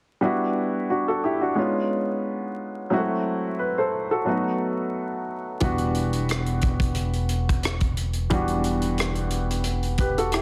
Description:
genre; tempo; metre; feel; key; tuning
R&B, neo-soul; 89 BPM; 4/4; swing 54% on 16ths; E minor; A4 = 441 Hz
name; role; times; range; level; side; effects
clear baby grand piano; accompaniment; 0.2-10.4 s; E3 to C5; -27 LUFS; equal; none
upright bass; bass; 5.6-10.4 s; E1; -28 LUFS; equal; none
tight funk drum kit; drums; 5.6-10.4 s; hi-hat, kick drum, rim click; -29 LUFS; equal; none
room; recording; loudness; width
light reverb; heavily compressed radio sound, multiband compression, vinyl crackle; -25 LUFS; mono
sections
0.2-10.4 A section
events
none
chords
0.2 Em9; 1.6 C#7; 2.9 F#m7b5; 4.3 B7; 5.6 Em9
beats
| 0.22 0.89 1.57 2.24 | 2.91 3.59 4.26 4.94 | 5.61 6.29 6.96 7.63 | 8.31 8.98 9.66 10.33

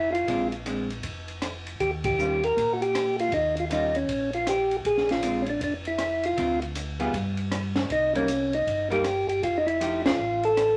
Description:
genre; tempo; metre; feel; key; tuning
soul jazz organ trio; 157 BPM; 4/4; swing 63% on 8ths; unclear; A4 = 437 Hz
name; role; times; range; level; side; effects
percussive tonewheel organ; melody; 0.0-10.8 s; Db4 to Bb4; -26 LUFS; equal; slow rotary speaker
mellow tonewheel organ; bass; 0.0-10.8 s; F1 to Bb2; -37 LUFS; equal; overdrive, chorus vibrato, slow rotary speaker
compact cocktail drum kit; drums; 0.1-10.7 s; hi-hat, kick drum, ride cymbal, rim click, snare drum; -35 LUFS; equal; none
archtop guitar, miked and amplified; accompaniment; 0.3-10.0 s; D3 to Ab4; -33 LUFS; equal; none
room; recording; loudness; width
moderate large studio reverb, RT60 0.9 s; none; -26 LUFS; mono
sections
0.0-10.8 A section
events
band accent 2.0, 10.0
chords
0.0 Bb9; 1.8 Eb9; 4.8 Bb9; 6.4 Dm7; 7.1 N.C.; 7.9 Cm7; 9.4 F9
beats
| 0.27 0.65 1.03 1.42 | 1.80 2.18 2.56 2.94 | 3.32 3.70 4.08 4.46 | 4.84 5.23 5.61 5.99 | 6.37 6.75 7.13 7.51 | 7.89 8.28 8.66 9.04 | 9.42 9.80 10.18 10.56

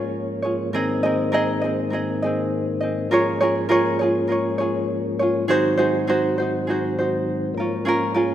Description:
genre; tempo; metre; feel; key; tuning
acoustic pop; 101 BPM; 4/4; straight; Ab mixolydian; A4 = 440 Hz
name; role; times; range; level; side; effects
tenor ukulele; accompaniment; 0.0-8.3 s; C4 to Eb5; -21 LUFS; right 1 dB; none
tonewheel organ; sustained chords; 0.0-8.3 s; Ab2 to Db4; -24 LUFS; left 2 dB; overdrive, slow rotary speaker
room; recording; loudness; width
wet lush hall reverb, RT60 2.6 s; rough home demo mix; -19 LUFS; side -11 dB against mid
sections
0.0-8.3 A section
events
none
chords
0.0 Db6/Ab; 0.7 Abadd9; 3.1 Db6/Ab; 5.5 Ab7; 7.6 Db6/Ab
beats
0.14 | 0.73 1.33 1.92 2.52 | 3.11 3.70 4.30 4.89 | 5.49 6.08 6.67 7.27 | 7.86

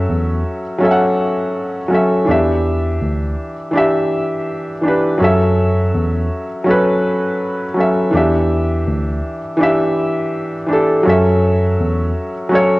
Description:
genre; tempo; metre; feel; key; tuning
lo-fi hip hop; 82 BPM; 4/4; swing 61% on 16ths; F# phrygian; A4 = 438 Hz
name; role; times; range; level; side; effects
felt-muted upright piano; accompaniment; 0.0-12.8 s; E3 to F#5; -15 LUFS; equal; low-pass filter
tine electric piano; bass; 0.0-12.1 s; D2 to F#2; -17 LUFS; equal; overdrive, fast stereo tremolo
room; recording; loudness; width
moderate spring reverb, RT60 1.4 s, small room reverb; worn, warbling old tape, cassette tape, warbly pitch drift; -14 LUFS; side -20 dB against mid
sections
0.0-12.8 A section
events
none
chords
0.0 F#m7; 2.3 Em7; 5.2 F#m7; 8.1 Em7; 11.1 F#m7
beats
0.08 0.81 1.54 | 2.28 3.01 3.74 4.47 | 5.20 5.94 6.67 7.40 | 8.13 8.86 9.59 10.33 | 11.06 11.79 12.52

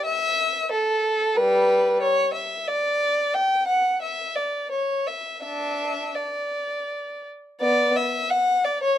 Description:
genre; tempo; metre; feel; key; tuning
classical, baroque-style suite movement for unaccompanied violin; 78-93 BPM; 3/4; rubato; D major; A4 = 436 Hz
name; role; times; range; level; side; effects
rich violin; solo; 0.0-9.0 s; G3 to G5; -21 LUFS; equal; none
room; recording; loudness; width
light reverb; none; -21 LUFS; side -11 dB against mid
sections
0.0-7.6 A section; 7.6-9.0 A section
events
none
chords
none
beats
0.06 0.71 | 1.36 2.02 2.68 | 3.35 4.03 4.72 | 5.43 6.15 6.87 | 7.62 8.32

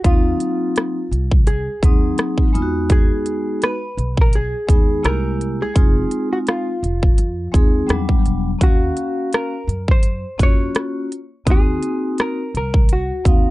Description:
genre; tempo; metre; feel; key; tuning
hip hop, jazz-hop; 84 BPM; 4/4; swing 59% on 16ths; unclear; A4 = 440 Hz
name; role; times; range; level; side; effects
hollow-body jazz guitar; melody; 0.0-13.5 s; F4 to Db5; -25 LUFS; equal; none
vibraphone with medium mallets; accompaniment; 0.0-13.5 s; Gb3 to F5; -22 LUFS; left 1 dB; none
upright bass; bass; 0.0-13.5 s; E1 to Gb2; -23 LUFS; equal; none
big-room dance drum kit; drums; 0.0-13.5 s; hi-hat, kick drum, rim click; -15 LUFS; equal; none
room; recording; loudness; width
little or no reverb; dark, warm production, nothing above 10.5 kHz; -16 LUFS; side -18 dB against mid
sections
0.0-13.5 A section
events
none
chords
0.0 Ab9; 2.5 Emaj7; 5.0 C7b13; 5.8 Fm7; 7.9 Em9; 8.6 Ebm9 (rootless); 11.5 Ab9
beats
| 0.04 0.76 1.47 2.19 | 2.90 3.62 4.33 5.04 | 5.76 6.47 7.19 7.90 | 8.62 9.33 10.04 10.76 | 11.47 12.19 12.90

